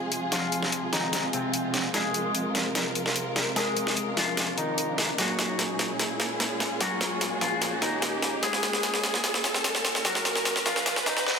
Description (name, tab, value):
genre	heavy wobble dubstep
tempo	148 BPM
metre	4/4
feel	half-time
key	unclear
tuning	A4 = 440 Hz
part	warm symphonic string section	sustained chords	0.0-11.2 s	Bb2 to Bb4	-31 LUFS	equal	none
part	riser	sound effects	1.9-11.4 s	none	-34 LUFS	equal	none
part	dubstep drum kit	drums	0.1-11.3 s	hi-hat, snare drum	-27 LUFS	equal	overdrive, high-pass filter on snare, high-pass filter on hats
part	electric guitar with an envelope filter	melody	0.3-11.3 s	C3 to Ab4	-31 LUFS	left 2 dB	tape echo
room	wet lush hall reverb, RT60 1.6 s, digital ambience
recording	dense, heavily limited modern master, high-pass filter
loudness	-24 LUFS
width	side -6 dB against mid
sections	0.0-11.4 A section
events	build-up 0.0-11.4; drum fill 0.0-11.3; riser 1.9-11.4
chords	0.0 Fm; 5.2 Gbadd9